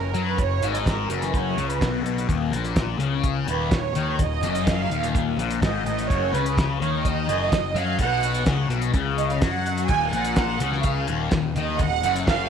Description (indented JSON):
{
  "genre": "psychedelic rock",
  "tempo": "126 BPM",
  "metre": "4/4",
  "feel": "straight",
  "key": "Eb minor",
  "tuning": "A4 = 436 Hz",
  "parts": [
    { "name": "clear studio string section", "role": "sustained chords", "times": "0.0-12.5 s", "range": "Bb4 to Ab5", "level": "-27 LUFS", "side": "right 10 dB", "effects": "none" },
    { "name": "thick fuzz guitar", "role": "riff", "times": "0.0-12.5 s", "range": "Eb2 to Gb3", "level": "-25 LUFS", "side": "left 8 dB", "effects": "distortion, phaser" },
    { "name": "fuzz picked electric bass", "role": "bass", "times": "0.0-12.5 s", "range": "Eb1 to Gb2", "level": "-28 LUFS", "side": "right 1 dB", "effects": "overdrive" },
    { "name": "cloth-damped thuddy drum kit", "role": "drums", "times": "0.1-12.4 s", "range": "hi-hat, kick drum, snare drum", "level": "-26 LUFS", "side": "right 1 dB", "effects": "none" }
  ],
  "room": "moderate echo chamber reverb, RT60 2.2 s",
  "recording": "1960s-style stereo with parts hard left and right",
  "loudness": "-21 LUFS",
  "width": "side -7 dB against mid",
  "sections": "0.0-12.5 A section",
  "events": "string section solo 0.0-12.5",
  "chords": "0.0 Gb5; 2.3 Ebm; 6.1 Gb5; 9.9 Ebm",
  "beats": "| 0.38 0.85 1.33 1.80 | 2.28 2.76 3.23 3.71 | 4.18 4.66 5.13 5.61 | 6.08 6.56 7.04 7.51 | 7.99 8.46 8.94 9.41 | 9.89 10.36 10.84 11.31 | 11.79 12.27"
}